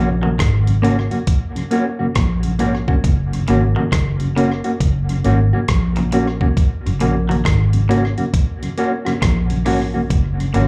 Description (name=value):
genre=roots reggae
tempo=68 BPM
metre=4/4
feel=swing 64% on 16ths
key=F# major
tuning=A4 = 439 Hz
part: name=mellow electric guitar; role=accompaniment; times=0.0-10.7 s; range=A#3 to F#4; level=-24 LUFS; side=equal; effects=dub echo, plate reverb, slapback echo
part: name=mellow tonewheel organ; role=accompaniment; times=0.0-10.7 s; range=F#2 to F#4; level=-27 LUFS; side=equal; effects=chorus vibrato, slow rotary speaker, plate reverb, slapback echo
part: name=semi-hollow electric guitar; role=arpeggios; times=0.0-10.7 s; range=G#2 to D#3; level=-28 LUFS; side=equal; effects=none
part: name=vintage muted fingered electric bass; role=bass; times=0.0-10.7 s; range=F#1 to A#1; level=-20 LUFS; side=equal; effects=none
part: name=dusty soul sampler-style drum kit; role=drums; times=0.4-10.7 s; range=hi-hat, kick drum, rim click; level=-22 LUFS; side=equal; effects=none
room=light reverb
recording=live gig heard through the venue's PA, club reverb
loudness=-17 LUFS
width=mono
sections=0.0-10.7 A section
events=none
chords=0.0 F#